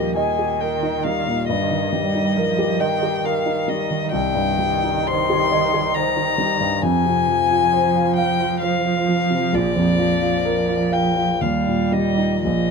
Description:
classical, slow romantic movement for piano trio; 56-69 BPM; 3/4; rubato; Eb major from 4.1 s; A4 = 440 Hz
rich violin; melody; 0.0-12.7 s; D5 to C6; -22 LUFS; left 7 dB
warm cello; second line; 0.0-12.7 s; Eb3 to G3; -24 LUFS; right 8 dB
warm concert grand piano; accompaniment; 0.0-12.7 s; Bb1 to F5; -21 LUFS; equal
light reverb; minimal, uncompressed stereo recording; -17 LUFS; side -5 dB against mid
0.0-12.7 A section
0.0 Eb; 1.5 Eb/G; 4.1 Cm; 6.8 Fm; 9.5 Bb; 11.4 Eb

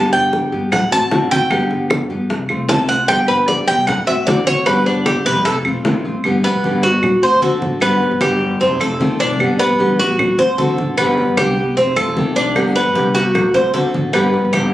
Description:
latin, Cuban son and guajira; 152 BPM; 4/4; straight; G major; A4 = 439 Hz
nylon-string guitar; accompaniment; 0.0-14.7 s; C3 to G4; -18 LUFS; left 1 dB
Cuban tres; arpeggios; 0.0-14.7 s; B3 to A5; -16 LUFS; right 1 dB
upright bass; bass; 0.0-14.7 s; E1 to D3; -25 LUFS; equal
congas; percussion; 0.1-14.7 s; -23 LUFS; equal
bongos and cowbell; percussion; 0.3-6.0, 12.6-14.7 s; -23 LUFS; left 1 dB
claves; percussion; 0.7-14.7 s; -22 LUFS; right 1 dB
light reverb; recorded on a phone in the room, club reverb; -13 LUFS; side -14 dB against mid
0.0-6.2 A section; 6.2-14.7 B section
Cuban tres solo 0.0-6.2
0.0 G; 0.7 D7; 1.5 G; 2.3 F7; 3.1 G; 3.9 D7; 4.7 G; 5.5 F7; 6.2 G; 7.0 D7; 7.8 G; 8.6 F7; 9.4 Gadd9; 10.2 D7; 11.0 G; 11.8 F7; 12.6 G; 13.3 D7; 14.1 G

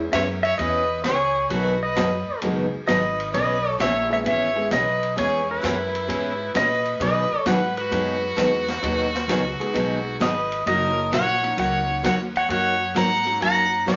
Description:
country, western swing; 131 BPM; 4/4; swing 68% on 8ths; B major; A4 = 440 Hz
clear upright piano; accompaniment; 0.0-13.8 s; F#3 to B4; -34 LUFS; equal
upright bass; bass; 0.0-14.0 s; F#1 to B2; -34 LUFS; equal
pedal steel guitar; melody; 0.1-14.0 s; B4 to A#5; -26 LUFS; equal
clear fiddle; second line; 0.1-14.0 s; E4 to F#5; -30 LUFS; equal
picked steel-string acoustic guitar; accompaniment; 0.1-14.0 s; B2 to G#4; -28 LUFS; equal
vintage drum kit; drums; 0.1-14.0 s; hi-hat, ride cymbal, snare drum; -34 LUFS; equal
wet studio reverb, RT60 0.6 s; nothing above 7.5 kHz; -22 LUFS; mono
0.0-14.0 A section
0.0 E6; 1.5 B6; 3.3 E6; 7.0 B6; 10.7 F#6

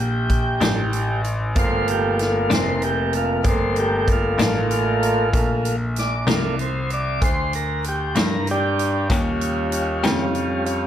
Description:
slow blues; 64 BPM (dotted quarters); 12/8; straight; G minor; A4 = 440 Hz
tonewheel organ; sustained chords; 0.0-10.9 s; G3 to D5; -22 LUFS; right 1 dB; slow rotary speaker
bright baby grand piano; bass; 0.0-10.9 s; F1 to G2; -23 LUFS; left 1 dB
swinging big-band drum kit; drums; 0.3-10.8 s; hi-hat, kick drum, snare drum; -25 LUFS; equal
clean electric guitar; accompaniment; 0.6-10.2 s; G2 to G4; -23 LUFS; left 4 dB; tremolo
light reverb; -18 LUFS; side -10 dB against mid
0.0-10.9 A section
tonewheel organ solo 0.0-10.9
0.0 Gm7; 9.1 Eb7

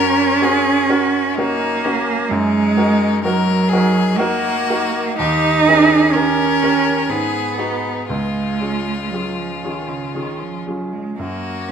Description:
classical, slow romantic movement for piano trio; 57-65 BPM; 3/4; rubato; A4 = 443 Hz
rich violin; melody; 0.0-11.7 s; C#4 to A#4; -23 LUFS; left 9 dB
rich cello; second line; 0.0-11.7 s; C#3 to D#4; -17 LUFS; right 4 dB
warm grand piano; accompaniment; 0.0-11.7 s; C#2 to A#4; -22 LUFS; equal
wet recital hall reverb, RT60 1.5 s; -15 LUFS; side -7 dB against mid
0.0-11.7 A section
0.0 F#; 2.3 D#m/F#; 5.2 D#7; 7.1 G#m7; 8.1 C#; 11.2 F#

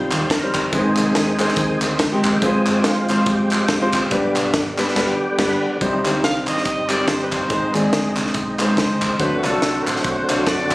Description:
uptempo gospel; 142 BPM; 4/4; swing 58% on 8ths; C harmonic minor; A4 = 440 Hz
clear grand piano; accompaniment; 0.0-10.7 s; G2 to D5; -21 LUFS; left 1 dB
tonewheel organ; sustained chords; 0.0-10.7 s; D3 to C5; -22 LUFS; right 1 dB; slow rotary speaker, overdrive, chorus vibrato
deep dub fingered electric bass; bass; 0.0-10.7 s; E1 to F2; -30 LUFS; equal
crisp fusion drum kit; drums; 0.1-10.7 s; crash cymbal, hi-hat, kick drum, snare drum; -24 LUFS; equal
group handclap; percussion; 0.1-10.7 s; -26 LUFS; equal
clear trumpet; melody; 6.2-10.7 s; Ab4 to F5; -24 LUFS; equal
moderate large studio reverb, RT60 1.1 s, small room ambience; recorded on a phone in the room, studio reverb, compression; -16 LUFS; side -20 dB against mid
0.0-5.8 A section; 5.8-10.7 B section
tonewheel organ solo 0.0-5.8; band accent 5.0-5.8
0.0 Cm; 0.7 Ab; 2.4 Fm; 4.1 G; 5.8 Cm; 7.5 Ab; 9.2 D7

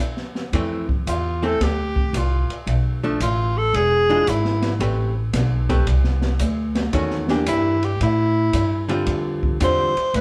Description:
jazz, small-group swing and bop; 112 BPM; 4/4; swing 67% on 8ths; A4 = 441 Hz
open jazz drum kit; drums; 0.2-10.2 s; hi-hat, kick drum, ride cymbal, snare drum; -30 LUFS; equal
archtop guitar, miked and amplified; accompaniment; 0.5-9.9 s; D3 to B4; -26 LUFS; equal
upright bass; bass; 0.5-10.2 s; E1 to A2; -24 LUFS; equal
breathy alto saxophone; melody; 1.1-10.2 s; E4 to C5; -23 LUFS; equal
moderate large studio reverb, RT60 0.9 s; band playing live in one room; -21 LUFS; mono
0.5-10.2 A section
break 0.0-0.5
0.0 N.C.; 0.5 Fmaj7; 2.7 Bm7b5; 3.7 E7b9; 4.8 Am9; 6.9 Em7b5; 8.0 A5; 9.1 Dm11

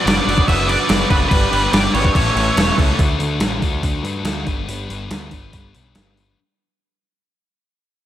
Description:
indie rock; 142 BPM; 4/4; straight; D major; A4 = 439 Hz
octave-fuzz lead guitar; melody; 0.0-2.7 s; B4 to E5; -20 LUFS; equal; distortion, slapback echo
analog string pad; sustained chords; 0.0-3.0 s; B4 to D6; -30 LUFS; left 2 dB
overdriven electric guitar; riff; 0.0-3.0 s; E3 to A4; -23 LUFS; right 7 dB; ensemble chorus, slapback echo
sludgy distorted guitar; riff; 0.0-6.4 s; A2 to B4; -23 LUFS; left 6 dB; overdrive, slapback echo
growling picked electric bass; bass; 0.1-6.3 s; E1 to G2; -23 LUFS; equal; overdrive
clean 12-bit digital drum machine; drums; 0.1-6.3 s; crash cymbal, hi-hat, kick drum, snare drum; -18 LUFS; equal; overdrive
moderate lush hall reverb, RT60 2.0 s; big arena sound; -14 LUFS; side -12 dB against mid
0.0-3.0 A section; 3.0-6.4 B section
fade-out 3.0-6.4
0.0 Bm/F#; 1.3 G; 2.1 Aadd9; 3.0 D; 4.5 G

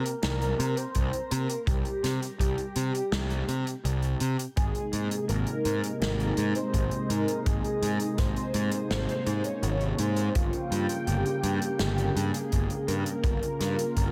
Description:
synthwave; 83 BPM; 4/4; straight; A4 = 440 Hz
unison lead; melody; 0.0-14.1 s; F4 to Db5; -35 LUFS; equal; subtle chorus, digital delay, shimmer reverb
natural country drum kit; drums; 0.1-14.1 s; hi-hat, snare drum; -38 LUFS; equal; gated reverb
fuzz picked electric bass; bass; 0.2-14.1 s; G1 to C3; -31 LUFS; equal; overdrive
kick drum; drums; 1.0-14.1 s; -31 LUFS; equal
warm analog pad; sustained chords; 4.6-14.1 s; C3 to G5; -35 LUFS; equal; chorus, sidechain pumping, shimmer reverb
light reverb, small room ambience; -28 LUFS; mono
0.0-14.1 A section
0.0 C5; 4.6 Abadd9; 10.4 Gdim

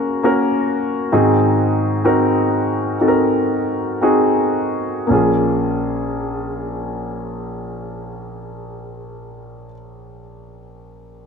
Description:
pop; 54-70 BPM; 4/4; straight; Bb minor; A4 = 440 Hz
warm grand piano; accompaniment; 0.0-11.3 s; Bb1 to Bb4; -17 LUFS; equal
light reverb; -15 LUFS; side -6 dB against mid
0.0-5.1 A section; 5.1-9.6 B section
slowing down 0.0-5.1
0.0 Gb; 1.1 Ab7; 5.1 Bbm7

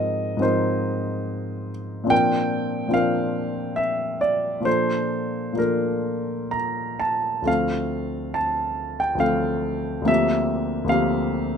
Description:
classical, impressionist solo piano; 63-75 BPM; 3/4; rubato; A4 = 440 Hz
warm concert grand piano; solo; 0.0-11.6 s; D2 to Bb5; -21 LUFS; equal
light reverb; minimal, uncompressed stereo recording; -21 LUFS; side -7 dB against mid
0.0-11.6 A section
0.0 Ab69; 2.1 Bb69; 4.7 Bbmaj7; 7.5 Dm7; 10.1 C11/D

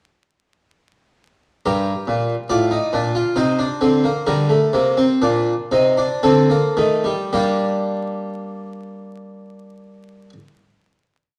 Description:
classical, baroque-style 3-part fugue for harpsichord; 52-72 BPM; 3/4; straight; G minor; A4 = 440 Hz
harpsichord; solo; 1.7-10.3 s; G2 to D5; -19 LUFS; equal
moderate recital hall reverb, RT60 1.4 s; dark, warm production, vinyl crackle; -18 LUFS; mono
1.6-7.3 exposition; 7.3-10.8 final chord
slowing down 1.6-9.1
1.6 Gm; 3.4 Cm9; 4.3 Gm; 6.2 D5; 7.3 Gm

